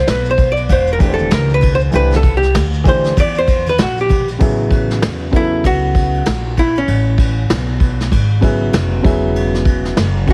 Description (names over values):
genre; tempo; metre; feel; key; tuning
hip hop, jazz-hop; 97 BPM; 4/4; swing 61% on 16ths; A major; A4 = 441 Hz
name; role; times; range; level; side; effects
archtop guitar, miked and amplified; melody; 0.0-10.3 s; C#4 to D5; -19 LUFS; equal; slapback echo
upright bass; bass; 0.0-10.3 s; E1 to E2; -20 LUFS; equal; none
vintage brush drum kit; drums; 0.1-10.3 s; hi-hat, kick drum, ride cymbal, snare drum; -19 LUFS; equal; none
maracas and congas; percussion; 0.1-4.4 s; none; -29 LUFS; equal; none
warm upright piano; accompaniment; 1.0-10.3 s; C#3 to C5; -21 LUFS; equal; none
room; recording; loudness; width
studio ambience; heavily compressed radio sound, multiband compression, vinyl crackle; -15 LUFS; mono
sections
0.0-4.4 A section; 4.4-10.3 B section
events
hollow-body jazz guitar solo 0.0-4.4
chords
0.0 Cmaj9; 4.4 Amaj9; 9.0 Eadd9